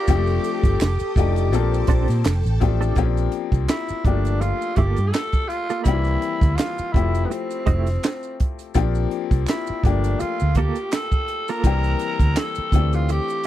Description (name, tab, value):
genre	R&B, neo-soul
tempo	83 BPM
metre	4/4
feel	swing 55% on 16ths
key	G dorian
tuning	A4 = 441 Hz
part	raspy tenor saxophone	melody	0.0-13.5 s	B3 to Bb4	-27 LUFS	right 1 dB	none
part	semi-hollow electric guitar	second line	0.0-13.1 s	A3 to A4	-26 LUFS	right 8 dB	tremolo
part	bright upright piano	accompaniment	0.0-13.5 s	Eb3 to A4	-26 LUFS	left 12 dB	none
part	string machine, violins	sustained chords	0.0-3.0 s	A4 to Eb6	-32 LUFS	right 1 dB	ensemble chorus
part	vintage muted fingered electric bass	bass	0.1-13.2 s	F1 to Bb2	-21 LUFS	right 1 dB	none
part	compact cocktail drum kit	drums	0.1-13.5 s	handclaps, hi-hat, kick drum, snare drum	-21 LUFS	right 1 dB	none
part	maracas and finger snaps	percussion	0.1-13.4 s	none	-40 LUFS	right 10 dB	none
room	little or no reverb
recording	dry, close 1970s-style studio recording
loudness	-19 LUFS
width	side -13 dB against mid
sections	0.0-3.0 A section; 3.0-13.5 B section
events	break 13.1-13.5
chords	0.1 F69; 0.8 F13; 1.5 Bbmaj9; 2.2 F69; 3.0 Bb69; 4.1 Gm9; 5.9 C7; 6.9 Fmaj9; 8.8 Bb69; 9.8 Gm9; 11.6 C7; 12.7 D9sus4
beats	| 0.08 0.80 1.52 2.25 | 2.97 3.69 4.41 5.14 | 5.86 6.58 7.31 8.03 | 8.75 9.47 10.20 10.92 | 11.64 12.37 13.09